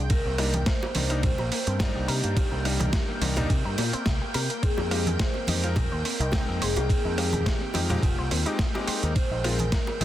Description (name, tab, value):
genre	nu-disco, nu disco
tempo	106 BPM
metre	4/4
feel	swing 54% on 16ths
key	C minor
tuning	A4 = 440 Hz
part	lush unison pad	sustained chords	0.0-10.0 s	Ab3 to G5	-34 LUFS	left 1 dB	chorus, sidechain pumping
part	analog pluck	arpeggios	0.0-10.0 s	Bb3 to C5	-37 LUFS	left 2 dB	chorus, cassette tape, sidechain pumping, tape echo
part	picked electric bass with an envelope filter	bass	0.0-10.0 s	F1 to C3	-28 LUFS	equal	none
part	vibraphone with medium hard mallets	melody	0.1-10.0 s	F4 to C5	-33 LUFS	equal	tape echo
part	dusty soul sampler-style drum kit	drums	0.1-10.0 s	hi-hat, ride cymbal, rim click, snare drum	-31 LUFS	right 2 dB	overdrive, small room reverb
part	electronic kick drum	drums	0.1-9.8 s	none	-26 LUFS	equal	overdrive, small room reverb
part	bright electric grand piano	accompaniment	0.4-10.0 s	G3 to G5	-34 LUFS	left 2 dB	sidechain pumping
part	bongos and congas	percussion	0.4-10.0 s	none	-34 LUFS	right 1 dB	none
room	digital ambience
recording	dense, heavily limited modern master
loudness	-23 LUFS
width	side -13 dB against mid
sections	0.0-10.0 A section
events	none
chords	0.1 Cm7; 4.6 Fm7; 9.2 Bb7sus4